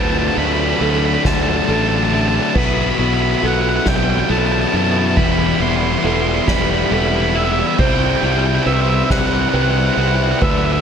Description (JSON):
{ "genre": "post-rock", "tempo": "46 BPM (dotted quarters)", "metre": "6/8", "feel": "straight", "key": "unclear", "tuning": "A4 = 440 Hz", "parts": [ { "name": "octave-fuzz lead guitar", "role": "melody", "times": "0.0-10.8 s", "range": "E5 to C6", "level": "-21 LUFS", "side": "equal", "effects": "distortion, slapback echo, digital delay" }, { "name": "shimmering ambient pad", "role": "sustained chords", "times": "0.0-10.8 s", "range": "C3 to D5", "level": "-30 LUFS", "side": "right 2 dB", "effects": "none" }, { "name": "felt-muted upright piano", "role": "arpeggios", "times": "0.0-10.8 s", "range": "B3 to C5", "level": "-27 LUFS", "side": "right 4 dB", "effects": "digital delay" }, { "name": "twelve-string electric guitar", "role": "arpeggios", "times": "0.0-10.8 s", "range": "B2 to B4", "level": "-27 LUFS", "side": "left 1 dB", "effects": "none" }, { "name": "crunchy overdriven guitar", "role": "riff", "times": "0.0-10.8 s", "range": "B2 to E4", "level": "-22 LUFS", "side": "left 10 dB", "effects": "slapback echo" }, { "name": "tight distorted guitar", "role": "riff", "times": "0.0-10.8 s", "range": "B2 to E4", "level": "-22 LUFS", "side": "right 12 dB", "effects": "distortion, slapback echo" }, { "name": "growling fingered electric bass", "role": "bass", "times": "0.0-10.8 s", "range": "E1 to F#2", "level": "-20 LUFS", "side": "equal", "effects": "overdrive" }, { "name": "soft-mallet drum kit", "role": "drums", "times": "0.4-10.6 s", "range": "crash cymbal, kick drum, ride cymbal, snare drum", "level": "-21 LUFS", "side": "right 1 dB", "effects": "none" } ], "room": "light reverb, small room ambience", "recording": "none", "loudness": "-14 LUFS", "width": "side -7 dB against mid", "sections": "0.0-10.8 A section", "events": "none", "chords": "0.0 Dadd9; 2.5 Bsus4; 5.2 Em7; 7.8 Cmaj7" }